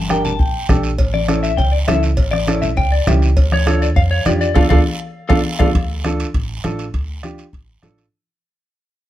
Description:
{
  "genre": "latin, cumbia",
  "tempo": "202 BPM",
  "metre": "4/4",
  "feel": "straight",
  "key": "D harmonic minor",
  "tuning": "A4 = 440 Hz",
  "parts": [
    { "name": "clean electric guitar", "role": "melody", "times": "0.0-5.7 s", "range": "A4 to A5", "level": "-22 LUFS", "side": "left 3 dB", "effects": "spring reverb, slapback echo" },
    { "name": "upright bass", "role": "bass", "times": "0.0-8.1 s", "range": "G1 to F2", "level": "-18 LUFS", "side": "equal", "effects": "none" },
    { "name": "warm upright piano", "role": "accompaniment", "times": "0.1-8.0 s", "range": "C#4 to Bb4", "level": "-21 LUFS", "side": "right 4 dB", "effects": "none" },
    { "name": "bombo", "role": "percussion", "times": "0.1-8.0 s", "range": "none", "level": "-18 LUFS", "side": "equal", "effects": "none" },
    { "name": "congas", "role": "percussion", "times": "0.1-8.0 s", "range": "none", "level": "-23 LUFS", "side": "left 3 dB", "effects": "none" },
    { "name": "guiro", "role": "percussion", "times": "0.1-8.1 s", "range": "none", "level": "-31 LUFS", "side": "right 5 dB", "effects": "none" },
    { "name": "cowbell and timbales", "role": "percussion", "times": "1.0-8.1 s", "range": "none", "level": "-28 LUFS", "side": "right 4 dB", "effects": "none" }
  ],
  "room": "little or no reverb",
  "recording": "close, detailed microphones",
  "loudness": "-14 LUFS",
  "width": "side -13 dB against mid",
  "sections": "0.0-5.7 A section; 5.7-8.1 B section",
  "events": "band accent 4.6-5.7; drum fill 5.0-5.7; fade-out 5.7-8.1",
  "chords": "0.0 Gm; 1.0 A; 3.4 Dm"
}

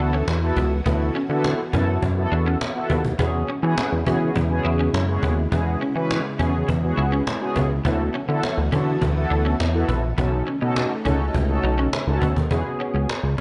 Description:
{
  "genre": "early-eighties boogie funk",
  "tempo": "103 BPM",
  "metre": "4/4",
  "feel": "straight",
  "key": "E major",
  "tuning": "A4 = 440 Hz",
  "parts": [
    { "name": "mellow synth brass", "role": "accompaniment", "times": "0.0-13.4 s", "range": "B3 to B4", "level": "-28 LUFS", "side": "equal", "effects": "chorus" },
    { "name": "soft string machine", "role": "sustained chords", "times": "0.0-12.5 s", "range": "C#3 to F#4", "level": "-34 LUFS", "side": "equal", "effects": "ensemble chorus" },
    { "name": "electric guitar at the edge of break-up", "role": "riff", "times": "0.0-13.4 s", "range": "B3 to E4", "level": "-32 LUFS", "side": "equal", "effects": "ensemble chorus" },
    { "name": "fat analog bass", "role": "bass", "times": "0.0-13.4 s", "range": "A#1 to E3", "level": "-24 LUFS", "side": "equal", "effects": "none" },
    { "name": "cajon", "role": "drums", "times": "0.1-13.4 s", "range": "none", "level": "-30 LUFS", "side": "equal", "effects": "none" }
  ],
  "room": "light reverb, digital ambience",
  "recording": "nothing above 10.8 kHz",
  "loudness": "-22 LUFS",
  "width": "mono",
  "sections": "0.0-12.5 A section",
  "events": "none",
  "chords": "0.0 D69; 3.2 E6; 7.8 D69; 10.2 B9; 12.5 E6"
}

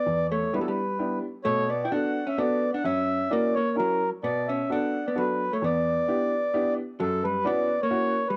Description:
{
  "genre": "musette waltz",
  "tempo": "130 BPM",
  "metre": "3/4",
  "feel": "straight",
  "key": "B minor",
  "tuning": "A4 = 440 Hz",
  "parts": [
    { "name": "mellow accordion", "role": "melody", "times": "0.0-8.4 s", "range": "A4 to G5", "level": "-29 LUFS", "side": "equal", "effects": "cassette tape" },
    { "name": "vintage hollow-body jazz guitar", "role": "second line", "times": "0.0-8.4 s", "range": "F#3 to E4", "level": "-32 LUFS", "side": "equal", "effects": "cassette tape" },
    { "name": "warm upright piano", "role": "accompaniment", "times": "0.1-8.1 s", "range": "E2 to A#4", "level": "-33 LUFS", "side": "equal", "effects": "cassette tape" }
  ],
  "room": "light reverb",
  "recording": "home recording on cassette",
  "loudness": "-26 LUFS",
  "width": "mono",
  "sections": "0.0-8.4 A section",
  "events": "none",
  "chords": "0.1 Em7; 1.5 Bm7; 2.8 F#7; 4.2 Bm7; 5.6 Em7; 7.0 F#7sus4; 7.9 F#7"
}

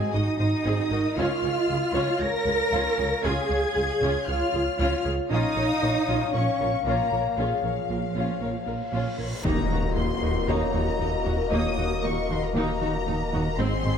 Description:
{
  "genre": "cinematic, hybrid orchestral and electronic film score",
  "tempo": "116 BPM",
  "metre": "4/4",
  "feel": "straight",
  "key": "Eb dorian",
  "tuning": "A4 = 441 Hz",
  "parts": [
    { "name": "warm symphonic violin section", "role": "melody", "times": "0.0-14.0 s", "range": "F5 to Bb6", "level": "-35 LUFS", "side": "left 3 dB", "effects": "none" },
    { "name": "warm symphonic violin section", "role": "second line", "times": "0.0-14.0 s", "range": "Ab4 to Bb6", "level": "-34 LUFS", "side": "left 4 dB", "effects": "none" },
    { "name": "rich symphonic viola section", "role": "accompaniment", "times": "0.0-13.9 s", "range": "Bb3 to Eb5", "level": "-32 LUFS", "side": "equal", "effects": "none" },
    { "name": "warm French horn section", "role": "sustained chords", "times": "0.0-14.0 s", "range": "Gb3 to F5", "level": "-31 LUFS", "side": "left 5 dB", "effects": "none" },
    { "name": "smooth synth bass", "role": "riff", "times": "0.0-14.0 s", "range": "Db2 to Bb2", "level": "-31 LUFS", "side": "right 1 dB", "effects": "none" },
    { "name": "warm symphonic cello section", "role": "bass", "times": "0.0-13.9 s", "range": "Eb2 to Bb4", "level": "-28 LUFS", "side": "right 2 dB", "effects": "none" },
    { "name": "felt-muted upright piano", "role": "texture", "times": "0.0-13.6 s", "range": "Bb3 to F5", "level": "-37 LUFS", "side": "left 1 dB", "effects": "digital delay" },
    { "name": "rich symphonic double bass section", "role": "bass", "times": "0.1-13.9 s", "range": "Ab1 to Eb2", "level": "-32 LUFS", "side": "right 2 dB", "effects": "none" },
    { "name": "reverse cymbal and impact", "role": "sound effects", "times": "9.0-11.5 s", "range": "none", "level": "-32 LUFS", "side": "left 2 dB", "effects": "none" },
    { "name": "pure sine sub bass", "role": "bass", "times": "9.5-14.0 s", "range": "Eb1 to Ab1", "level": "-33 LUFS", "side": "left 1 dB", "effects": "none" }
  ],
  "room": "moderate recital hall reverb, RT60 1.6 s",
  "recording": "none",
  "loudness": "-23 LUFS",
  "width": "side -7 dB against mid",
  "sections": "0.0-9.4 A section; 9.4-14.0 B section",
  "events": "reverse cymbal 9.0-9.4; impact 9.4-11.5",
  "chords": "0.0 Ab7; 1.2 Db; 5.3 Bbm; 9.4 Ebm"
}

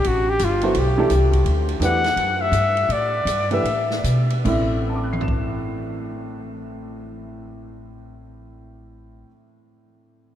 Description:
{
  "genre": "modal jazz",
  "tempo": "145-170 BPM",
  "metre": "4/4",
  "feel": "swing 64% on 8ths",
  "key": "A dorian",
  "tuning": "A4 = 442 Hz",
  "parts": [
    { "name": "mellow trumpet", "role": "melody", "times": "0.0-4.0 s", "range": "F4 to F#5", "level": "-22 LUFS", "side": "left 2 dB", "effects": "none" },
    { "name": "upright bass", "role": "bass", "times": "0.0-9.2 s", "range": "G1 to B2", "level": "-23 LUFS", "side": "equal", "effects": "none" },
    { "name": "open jazz drum kit", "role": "drums", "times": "0.0-5.4 s", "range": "crash cymbal, hi-hat, kick drum, ride cymbal, snare drum, toms", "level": "-30 LUFS", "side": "equal", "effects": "none" },
    { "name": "warm upright piano", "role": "accompaniment", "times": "0.6-9.4 s", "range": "A2 to E7", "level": "-26 LUFS", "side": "right 2 dB", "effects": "none" }
  ],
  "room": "wet cathedral reverb, RT60 6.8 s",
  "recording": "in a vast, echoing space",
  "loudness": "-18 LUFS",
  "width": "side -10 dB against mid",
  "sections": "0.0-4.4 A section; 4.4-7.8 B section",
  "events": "trumpet solo 0.0-4.4; slowing down 1.4-4.4",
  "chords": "0.0 A9sus4; 4.4 Am"
}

